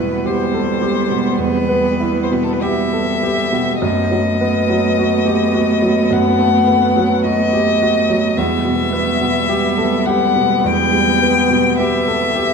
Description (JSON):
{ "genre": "classical, slow romantic movement for piano quartet", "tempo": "53 BPM", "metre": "4/4", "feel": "rubato", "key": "E minor", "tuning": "A4 = 444 Hz", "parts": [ { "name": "rich violin", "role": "melody", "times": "0.0-12.5 s", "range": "A4 to G5", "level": "-18 LUFS", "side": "left 6 dB", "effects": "none" }, { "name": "rich cello", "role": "second line", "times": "0.0-12.5 s", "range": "G3 to A3", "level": "-20 LUFS", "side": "right 4 dB", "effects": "none" }, { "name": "clear grand piano", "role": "accompaniment", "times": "0.0-12.5 s", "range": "E2 to A4", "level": "-18 LUFS", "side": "right 1 dB", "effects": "none" }, { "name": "warm viola", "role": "accompaniment", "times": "0.0-12.5 s", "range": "B3", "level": "-22 LUFS", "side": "right 2 dB", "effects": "none" } ], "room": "moderate concert hall reverb, RT60 2.1 s", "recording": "minimal, uncompressed stereo recording", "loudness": "-13 LUFS", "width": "side -5 dB against mid", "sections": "0.0-12.5 A section", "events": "none", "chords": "0.0 Em; 3.8 B7/F#; 8.4 Em" }